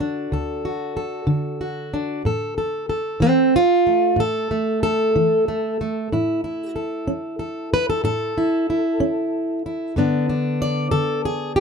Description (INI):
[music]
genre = acoustic country blues, solo or duo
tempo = 62 BPM (dotted quarters)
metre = 12/8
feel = straight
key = unclear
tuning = A4 = 440 Hz
[part]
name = fingerpicked plugged-in steel-string acoustic guitar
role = solo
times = 0.0-11.6 s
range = D2 to D5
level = -19 LUFS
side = equal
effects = none
[sound]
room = light reverb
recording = close, detailed microphones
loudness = -19 LUFS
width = side -5 dB against mid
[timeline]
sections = 0.0-11.6 A section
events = none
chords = 0.0 D; 2.3 A; 10.0 G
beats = 0.33 1.29 | 2.25 3.21 4.18 5.14 | 6.11 7.07 8.04 9.01 | 9.97 10.94